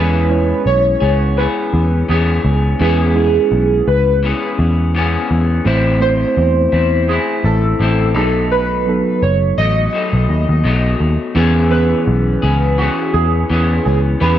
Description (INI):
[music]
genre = indie pop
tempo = 84 BPM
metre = 4/4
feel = swing 55% on 16ths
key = E major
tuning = A4 = 440 Hz
[part]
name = warbly lo-fi synth keys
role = melody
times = 0.0-14.4 s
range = F#4 to D#5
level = -18 LUFS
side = right 2 dB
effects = phaser, lush chorus, slapback echo
[part]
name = electric guitar through a small old amp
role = accompaniment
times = 0.0-14.4 s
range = A2 to G#4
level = -20 LUFS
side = left 4 dB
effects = lush chorus, warbly pitch drift
[part]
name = reed electric piano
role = accompaniment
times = 0.0-14.4 s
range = E3 to C#5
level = -21 LUFS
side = right 3 dB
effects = cassette tape
[part]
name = vintage muted picked electric bass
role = bass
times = 0.0-14.4 s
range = F#1 to E2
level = -15 LUFS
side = equal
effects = none
[sound]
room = light reverb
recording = none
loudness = -12 LUFS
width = side -11 dB against mid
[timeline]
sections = 0.0-14.4 A section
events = none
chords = 0.0 E6; 5.7 Am; 8.2 B7; 11.4 E6